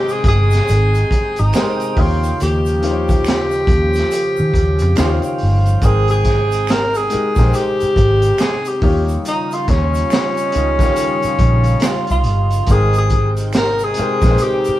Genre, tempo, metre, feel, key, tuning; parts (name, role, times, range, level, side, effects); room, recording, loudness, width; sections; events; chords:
R&B, neo-soul; 70 BPM; 4/4; swing 61% on 16ths; Ab major; A4 = 440 Hz
warm tenor saxophone; melody; 0.0-14.8 s; Db4 to Bb4; -18 LUFS; equal
warm baby grand piano; accompaniment; 0.0-14.8 s; Eb3 to G5; -24 LUFS; left 3 dB
chorused pulse-width pad; sustained chords; 0.0-14.8 s; C3 to G5; -27 LUFS; equal
vintage muted fingered electric bass; bass; 0.0-14.7 s; G1 to Eb3; -16 LUFS; equal
crunchy breakbeat drum kit; drums; 0.1-14.8 s; hi-hat, kick drum, snare drum; -19 LUFS; equal
egg shaker and finger snaps; percussion; 0.1-14.8 s; -35 LUFS; right 3 dB
moderate stone room reverb, RT60 1.0 s; band playing live in one room; -13 LUFS; side -14 dB against mid
0.0-5.8 A section; 5.8-14.8 B section
0.0 Abmaj7; 2.0 Eb9; 5.8 Abmaj7; 8.8 Eb9; 12.7 Abmaj7